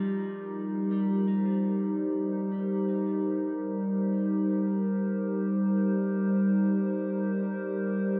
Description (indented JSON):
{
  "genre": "ambient",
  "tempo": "free time",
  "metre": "none",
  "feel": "none",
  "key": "Eb major",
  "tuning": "A4 = 440 Hz",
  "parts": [
    { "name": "warbly tape-like pad", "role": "sustained chords", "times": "0.0-8.2 s", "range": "G3 to C5", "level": "-28 LUFS", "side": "equal", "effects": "chorus, built-in reverb" },
    { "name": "clean electric guitar", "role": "arpeggios", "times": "0.0-5.0 s", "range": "F3 to Eb4", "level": "-50 LUFS", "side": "equal", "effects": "tape echo" }
  ],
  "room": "wet cathedral reverb, RT60 6.0 s",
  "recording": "none",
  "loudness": "-28 LUFS",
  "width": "mono",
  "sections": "0.0-8.2 A section",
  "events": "fade-in on clean electric guitar 0.0-8.2",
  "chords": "0.0 Eb69"
}